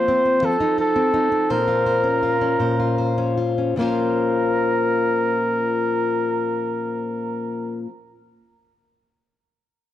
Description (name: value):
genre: six-eight pop ballad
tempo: 50-58 BPM (dotted quarters)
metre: 6/8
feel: straight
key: Bb minor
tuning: A4 = 439 Hz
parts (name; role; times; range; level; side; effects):
- warm flugelhorn; melody; 0.0-7.8 s; A4 to C5; -21 LUFS; right 1 dB; tape echo
- fingerpicked plugged-in steel-string acoustic guitar; accompaniment; 0.0-7.9 s; Bb2 to C5; -22 LUFS; left 3 dB; none
room: moderate recital hall reverb, RT60 1.6 s, small room ambience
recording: dark, warm production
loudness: -18 LUFS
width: side -11 dB against mid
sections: 0.0-3.8 A section; 3.8-8.6 B section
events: slowing down 0.0-3.8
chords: 0.4 F7; 1.5 Bbmadd9